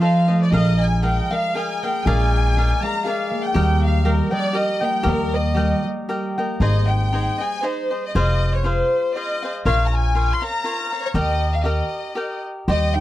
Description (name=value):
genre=mexican folk, mariachi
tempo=119 BPM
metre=3/4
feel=swing 53% on 8ths, rubato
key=Eb major, Ab major from 6.6 s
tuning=A4 = 435 Hz
part: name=clear chamber violin section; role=melody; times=0.0-13.0 s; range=Bb4 to C6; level=-23 LUFS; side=left 1 dB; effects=none
part: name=cavaquinho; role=accompaniment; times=0.0-13.0 s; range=Eb4 to G5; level=-26 LUFS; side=left 1 dB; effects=none
part: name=concert harp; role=arpeggios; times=0.0-9.6, 12.7-13.0 s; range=F3 to Ab4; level=-23 LUFS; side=equal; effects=none
part: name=upright bass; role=bass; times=0.5-13.0 s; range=F1 to Eb2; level=-19 LUFS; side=equal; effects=none
room=little or no reverb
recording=dry, close 1970s-style studio recording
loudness=-18 LUFS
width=side -14 dB against mid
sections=0.0-6.6 A section; 6.6-13.0 B section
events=none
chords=0.0 F7; 0.5 Bb7sus4; 2.1 Bb7; 3.6 Eb; 6.6 Ab; 8.1 Fm; 9.7 Bbm; 11.2 Eb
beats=0.01 | 0.53 1.04 1.55 | 2.05 2.56 3.06 | 3.55 4.05 4.55 | 5.05 5.56 6.08 | 6.61 7.13 7.64 | 8.15 8.65 9.15 | 9.66 10.16 10.65 | 11.15 11.65 12.16 | 12.68